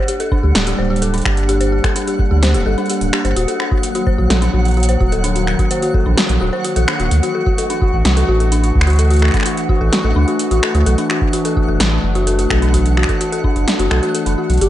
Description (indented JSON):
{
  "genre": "IDM",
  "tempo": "128 BPM",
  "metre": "4/4",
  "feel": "straight",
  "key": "unclear",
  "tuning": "A4 = 440 Hz",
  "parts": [
    { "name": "hollow soft pad", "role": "sustained chords", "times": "0.1-14.7 s", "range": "Eb3 to G4", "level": "-21 LUFS", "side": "equal", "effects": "chorus, vintage 12-bit sampler grit" },
    { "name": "dark detuned synth bell", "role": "arpeggios", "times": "0.0-14.7 s", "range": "D4 to C5", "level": "-21 LUFS", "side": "left 2 dB", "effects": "chorus, analog delay" },
    { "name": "twinkling granular texture", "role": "texture", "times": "0.0-14.7 s", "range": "F#5 to D6", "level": "-28 LUFS", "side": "right 1 dB", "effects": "built-in reverb" },
    { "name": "electro analog drum machine", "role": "drums", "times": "0.1-14.7 s", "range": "finger snaps, hi-hat, snare drum", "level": "-20 LUFS", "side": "equal", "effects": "overdrive, tape echo" },
    { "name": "electronic kick drum", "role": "drums", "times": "0.3-13.5 s", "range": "none", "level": "-18 LUFS", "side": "equal", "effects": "overdrive" },
    { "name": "warm sub bass", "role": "bass", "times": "0.4-14.7 s", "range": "D1 to D2", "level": "-15 LUFS", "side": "equal", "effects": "none" },
    { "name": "warbly nostalgic lead", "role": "melody", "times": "14.6-14.7 s", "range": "G4", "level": "-14 LUFS", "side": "equal", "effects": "chorus" }
  ],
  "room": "light reverb",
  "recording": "echo-heavy mix, nothing above 10.5 kHz",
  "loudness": "-13 LUFS",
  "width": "side -13 dB against mid",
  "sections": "0.0-14.7 A section",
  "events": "none",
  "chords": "0.0 Gm; 3.4 Ebm; 7.1 Dadd9; 10.9 Bm",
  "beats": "0.08 0.55 1.02 | 1.49 1.96 2.43 2.90 | 3.36 3.83 4.30 4.77 | 5.24 5.71 6.18 6.64 | 7.11 7.58 8.05 8.52 | 8.99 9.46 9.93 10.39 | 10.86 11.33 11.80 12.27 | 12.74 13.21 13.68 14.14 | 14.61"
}